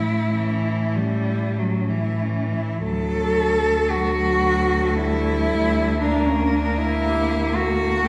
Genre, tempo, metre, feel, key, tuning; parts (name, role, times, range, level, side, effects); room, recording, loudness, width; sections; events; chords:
classical, lyrical piece for cello ensemble; 45-61 BPM; 3/4; rubato; D major; A4 = 440 Hz
rich cello; melody; 0.0-8.1 s; E4 to Bb4; -32 LUFS; equal
rich cello; second line; 0.0-8.1 s; C#4 to A4; -25 LUFS; equal
warm cello; accompaniment; 0.0-8.1 s; E3 to Bb3; -30 LUFS; equal
rich cello; bass; 0.0-8.1 s; D2 to A2; -26 LUFS; equal
wet scoring stage reverb, RT60 1.7 s; heard from further back in the room; -21 LUFS; mono
0.0-2.8 A section; 2.8-8.1 B section
0.0 A; 2.8 D; 6.0 Gm/D